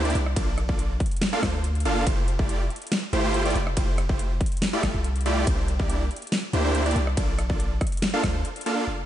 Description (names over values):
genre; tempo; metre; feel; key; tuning
future bass; 141 BPM; 4/4; half-time; F major; A4 = 439 Hz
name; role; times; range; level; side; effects
supersaw chords; riff; 0.0-8.9 s; A3 to F5; -27 LUFS; right 1 dB; sidechain pumping, ping-pong delay
long sustained 808-style bass; bass; 0.0-9.1 s; F1 to D2; -26 LUFS; equal; sidechain pumping
dubstep drum kit; drums; 0.1-9.0 s; hi-hat, ride cymbal, rim click, snare drum; -30 LUFS; equal; low-pass filter on hats, low-pass filter on snare, low-pass filter on cymbals
electronic kick drum; drums; 0.4-8.3 s; none; -26 LUFS; equal; overdrive
room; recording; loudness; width
digital ambience; nothing above 10.5 kHz; -22 LUFS; side -12 dB against mid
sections
0.0-8.9 A section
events
drop 0.0-8.9; break 8.4-8.9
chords
0.4 Bbmaj7; 2.1 Fmaj9; 5.5 C9; 7.2 Bbmaj7